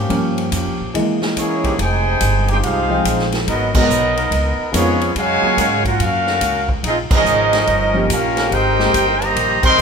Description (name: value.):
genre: jazz, big band swing.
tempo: 142 BPM.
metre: 4/4.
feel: swing 65% on 8ths.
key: F minor.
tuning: A4 = 440 Hz.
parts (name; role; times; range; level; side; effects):
warm trombone section; sustained chords; 0.0-5.8, 8.4-8.9 s; F3 to Bb4; -27 LUFS; equal; none.
upright bass; bass; 0.0-9.8 s; F1 to Ab2; -22 LUFS; equal; none.
warm concert grand piano; accompaniment; 0.1-9.8 s; Fb3 to G5; -21 LUFS; equal; none.
swinging big-band drum kit; drums; 0.1-9.8 s; crash cymbal, hi-hat, kick drum, ride cymbal, snare drum; -22 LUFS; equal; none.
warm trumpet section; melody; 1.4-9.8 s; Bb3 to C6; -17 LUFS; equal; none.
brilliant trombone section; second line; 1.4-9.8 s; C3 to G4; -23 LUFS; right 2 dB; none.
room: moderate large studio reverb, RT60 1.2 s.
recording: minimal, uncompressed stereo recording.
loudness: -14 LUFS.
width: side -6 dB against mid.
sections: 0.0-1.8 A section; 1.8-9.8 B section.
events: grand piano solo 0.0-1.8; band accent 3.7, 7.0, 9.6.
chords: 0.1 Gm7b5; 0.9 Dbm69/Fb; 1.8 Fm9; 3.5 Abm9; 4.3 Db13; 5.2 Gbmaj7; 6.8 Bbm7; 7.7 Eb9.